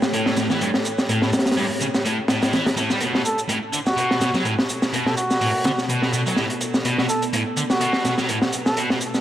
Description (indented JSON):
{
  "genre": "breakbeat, breaks",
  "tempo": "125 BPM",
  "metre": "4/4",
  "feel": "swing 55% on 16ths",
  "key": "B minor",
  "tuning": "A4 = 440 Hz",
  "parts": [
    { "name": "deep dark ambient pad", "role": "sustained chords", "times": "0.0-9.2 s", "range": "A3 to G5", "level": "-29 LUFS", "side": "equal", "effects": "chorus, built-in reverb" },
    { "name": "crunchy breakbeat drum kit", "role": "drums", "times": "0.0-9.2 s", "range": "hi-hat, snare drum", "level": "-22 LUFS", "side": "equal", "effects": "high-pass filter on hats, high-pass filter on snare, high-pass filter on room, dub echo" },
    { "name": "shaker", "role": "drums", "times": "0.0-9.2 s", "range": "none", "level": "-33 LUFS", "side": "right 3 dB", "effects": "none" },
    { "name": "distorted electric guitar", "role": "riff", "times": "0.1-9.0 s", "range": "G2 to G3", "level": "-24 LUFS", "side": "equal", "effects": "distortion, low-pass filter, dub echo" },
    { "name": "trumpet with cup mute", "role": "melody", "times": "3.2-8.8 s", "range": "F#4 to A4", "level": "-26 LUFS", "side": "right 1 dB", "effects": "AM radio sound, dub echo" }
  ],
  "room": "moderate echo chamber reverb, RT60 2.1 s",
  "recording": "echo-heavy mix, vinyl crackle",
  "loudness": "-19 LUFS",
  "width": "side -12 dB against mid",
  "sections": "0.0-9.2 A section",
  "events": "none",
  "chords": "0.0 A7; 3.0 Bm9"
}